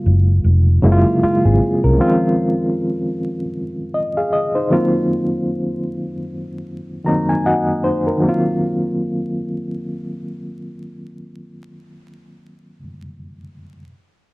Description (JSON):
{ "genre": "R&B", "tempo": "77 BPM", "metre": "4/4", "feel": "swing 58% on 16ths", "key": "Eb dorian", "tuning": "A4 = 437 Hz", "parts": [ { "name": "bright reed electric piano", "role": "accompaniment", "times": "0.0-13.9 s", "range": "Db3 to Bb5", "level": "-18 LUFS", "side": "equal", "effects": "fast tremolo, cassette tape" }, { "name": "vintage muted fingered electric bass", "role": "bass", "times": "0.1-2.0 s", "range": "F1 to C2", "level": "-13 LUFS", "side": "equal", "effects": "none" } ], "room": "moderate small room reverb, RT60 0.6 s", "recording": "home recording on cassette, vinyl crackle", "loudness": "-15 LUFS", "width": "side -23 dB against mid", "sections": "0.0-8.2 A section; 8.2-11.3 B section", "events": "reed electric piano fill 6.7-8.2", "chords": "0.0 Ab13sus4; 2.0 Fm7; 4.7 Ebm69", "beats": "0.44 1.22 | 2.00 2.77 3.55 4.33 | 5.11 5.89 6.67 7.45 | 8.23 9.01 9.79 10.57" }